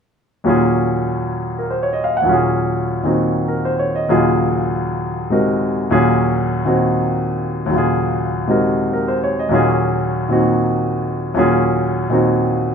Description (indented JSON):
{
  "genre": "jazz",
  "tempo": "132 BPM",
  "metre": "4/4",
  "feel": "swing 68% on 8ths",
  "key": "Eb dorian",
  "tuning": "A4 = 440 Hz",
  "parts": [
    { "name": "clear baby grand piano", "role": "accompaniment", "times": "0.4-12.7 s", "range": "Eb2 to Gb5", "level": "-15 LUFS", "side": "equal", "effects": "none" }
  ],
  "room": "moderate small room reverb, RT60 0.5 s",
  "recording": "minimal, uncompressed stereo recording",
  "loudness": "-15 LUFS",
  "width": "side -6 dB against mid",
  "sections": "0.5-12.7 A section",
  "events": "none",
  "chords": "0.5 Ebm11"
}